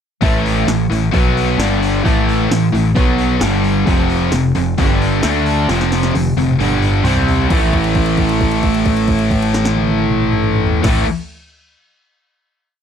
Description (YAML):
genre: heavy metal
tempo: 132 BPM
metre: 4/4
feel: straight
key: A minor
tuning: A4 = 439 Hz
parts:
  - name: crunchy overdriven guitar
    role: riff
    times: 0.2-11.1 s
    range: F2 to D4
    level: -20 LUFS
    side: equal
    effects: none
  - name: distorted electric guitar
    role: riff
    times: 0.2-11.1 s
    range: F2 to D4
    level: -20 LUFS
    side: right 10 dB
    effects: distortion
  - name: scooped high-gain guitar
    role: riff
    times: 0.2-11.1 s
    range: F2 to D4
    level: -19 LUFS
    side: left 10 dB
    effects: distortion
  - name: growling picked electric bass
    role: bass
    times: 0.2-11.0 s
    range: F1 to D2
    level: -19 LUFS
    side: equal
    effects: overdrive
  - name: deep house drum kit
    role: drums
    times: 0.2-10.9 s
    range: crash cymbal, hi-hat, kick drum, snare drum, toms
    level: -19 LUFS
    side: equal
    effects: none
room: light reverb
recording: dark, warm production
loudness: -13 LUFS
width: side -8 dB against mid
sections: 0.2-7.5 riff; 7.5-11.1 final chord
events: drum fill 5.7-7.5; held note 7.5-10.8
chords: 0.2 A5; 1.1 B5; 1.6 G5; 2.0 A5; 3.0 B5; 3.4 G5; 3.9 F5; 4.8 G5; 5.2 D5; 5.7 F5; 6.6 G5; 7.0 C5; 7.5 A5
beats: | 0.22 0.68 1.13 1.59 | 2.04 2.50 2.96 3.41 | 3.87 4.32 4.78 5.23 | 5.69 6.14 6.59 7.05 | 7.50 7.95 8.40 8.85 | 9.30 9.75 10.20 10.65